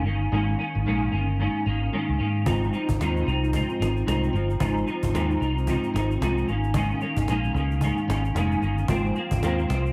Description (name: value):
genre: indie pop, bedroom pop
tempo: 112 BPM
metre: 4/4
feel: swing 60% on 16ths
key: Ab major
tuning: A4 = 440 Hz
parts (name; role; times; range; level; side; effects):
- semi-hollow electric guitar; accompaniment; 0.0-9.9 s; Ab2 to Eb4; -28 LUFS; equal; ensemble chorus, warbly pitch drift
- fingered electric bass; bass; 0.0-9.9 s; F1 to Ab2; -28 LUFS; equal; none
- cajon; drums; 2.5-9.9 s; none; -34 LUFS; equal; none
room: light reverb, small room ambience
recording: heavily compressed radio sound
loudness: -25 LUFS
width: mono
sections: 0.0-9.9 A section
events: none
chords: 0.0 Eb7sus4; 2.5 Ab6; 6.5 Eb7sus4/Ab; 8.9 Ab69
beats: | 0.32 0.86 1.39 1.93 | 2.46 3.00 3.54 4.07 | 4.61 5.14 5.68 6.21 | 6.75 7.28 7.82 8.35 | 8.89 9.42